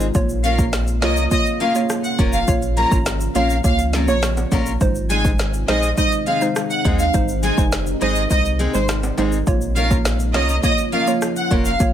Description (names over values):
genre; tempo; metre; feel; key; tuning
dancehall; 103 BPM; 4/4; straight; Bb minor; A4 = 438 Hz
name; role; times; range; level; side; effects
hollow square pluck; accompaniment; 0.0-11.9 s; Ab3 to Db5; -24 LUFS; right 4 dB; chorus, sidechain pumping
deep dark ambient pad; sustained chords; 0.0-11.9 s; C3 to F4; -27 LUFS; equal; chorus, built-in reverb, sidechain pumping
picked steel-string acoustic guitar; arpeggios; 0.0-11.7 s; Ab3 to Bb4; -26 LUFS; left 2 dB; none
warm sub bass; bass; 0.0-11.9 s; F1 to Eb2; -22 LUFS; equal; none
tube shaker and timbales; percussion; 0.0-11.9 s; none; -33 LUFS; left 1 dB; none
afro-pop drum kit; drums; 0.1-11.9 s; hi-hat, kick drum, rim click, snare drum; -21 LUFS; equal; vintage 12-bit sampler grit
rich studio violin section; melody; 0.4-11.8 s; C5 to Bb5; -22 LUFS; equal; none
room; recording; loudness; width
little or no reverb; none; -16 LUFS; side -10 dB against mid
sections
0.0-11.9 A section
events
none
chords
0.1 Bbm; 4.8 Ab; 9.5 Bbm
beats
| 0.15 0.73 1.31 1.90 | 2.48 3.06 3.65 4.23 | 4.81 5.39 5.97 6.56 | 7.14 7.72 8.30 8.89 | 9.47 10.05 10.64 11.22 | 11.80